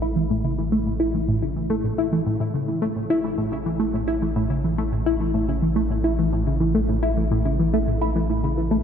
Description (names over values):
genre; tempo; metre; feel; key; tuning
ambient, sequencer-driven space music; 107 BPM; 4/4; straight; A major; A4 = 440 Hz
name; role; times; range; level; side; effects
tight sequenced synth; riff; 0.0-8.8 s; A2 to E4; -21 LUFS; equal; chorus, ping-pong delay
warm sub bass; bass; 0.0-8.8 s; A1; -26 LUFS; equal; none
room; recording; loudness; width
wet cathedral reverb, RT60 5.3 s; in a vast, echoing space; -20 LUFS; side -8 dB against mid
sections
0.0-8.8 A section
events
none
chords
0.0 A